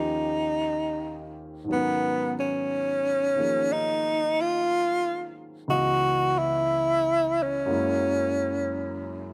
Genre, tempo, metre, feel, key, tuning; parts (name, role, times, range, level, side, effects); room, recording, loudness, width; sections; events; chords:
jazz; 60 BPM; 4/4; swing 67% on 8ths; A4 = 441 Hz
breathy tenor saxophone; melody; 0.0-9.3 s; Cb4 to Gb4; -26 LUFS; equal; slapback echo
warm concert grand piano; accompaniment; 0.0-9.3 s; Db2 to Eb5; -34 LUFS; equal
little or no reverb; recorded outdoors, with no room sound; -26 LUFS; mono
0.0-1.7 A section; 1.7-9.3 B section
0.0 Eb7; 1.7 Abm11; 5.7 Dbm7; 7.7 Gb9